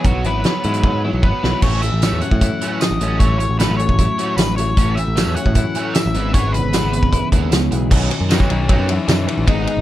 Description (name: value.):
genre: indie rock.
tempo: 153 BPM.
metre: 4/4.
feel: straight.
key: unclear.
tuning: A4 = 440 Hz.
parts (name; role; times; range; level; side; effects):
octave-fuzz lead guitar; melody; 0.0-9.8 s; B3 to F#5; -24 LUFS; left 3 dB; distortion, tape echo.
overdriven electric guitar; riff; 0.0-9.7 s; E3 to G#4; -25 LUFS; right 6 dB; ensemble chorus.
twelve-string electric guitar; riff; 0.0-9.8 s; G#2 to E4; -24 LUFS; left 6 dB; none.
modern bright picked electric bass; bass; 0.0-9.8 s; G#1 to A2; -20 LUFS; equal; none.
loose indie drum kit; drums; 0.0-9.8 s; crash cymbal, hi-hat, kick drum, ride cymbal, snare drum; -18 LUFS; equal; none.
tambourine; percussion; 2.0-9.2 s; none; -33 LUFS; right 5 dB; none.
room: little or no reverb.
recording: dark, warm production.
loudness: -15 LUFS.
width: side -14 dB against mid.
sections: 0.0-1.6 A section; 1.6-7.9 B section; 7.9-9.8 C section.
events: drum fill 0.8-1.6; lead electric guitar solo 7.9-9.8.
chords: 0.0 Bsus4; 1.6 A6; 6.1 E6/G#; 7.9 Badd9.